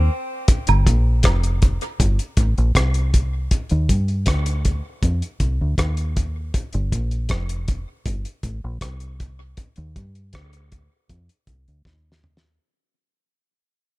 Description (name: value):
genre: dub reggae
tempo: 79 BPM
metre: 4/4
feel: straight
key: G minor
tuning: A4 = 438 Hz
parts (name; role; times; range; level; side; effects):
- deep dub fingered electric bass; bass; 0.0-12.6 s; F1 to G2; -20 LUFS; equal; none
- cloth-damped thuddy drum kit; drums; 0.5-12.5 s; hi-hat, kick drum, rim click, snare drum, toms; -20 LUFS; equal; none
- woodblock; percussion; 0.7-0.9 s; none; -28 LUFS; right 8 dB; tape echo
room: little or no reverb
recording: none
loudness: -18 LUFS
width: side -19 dB against mid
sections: 0.5-12.6 A section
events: break 0.0-0.5; part muted 0.5-12.6; fade-out 0.5-12.6; drum fill 11.9-12.6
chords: none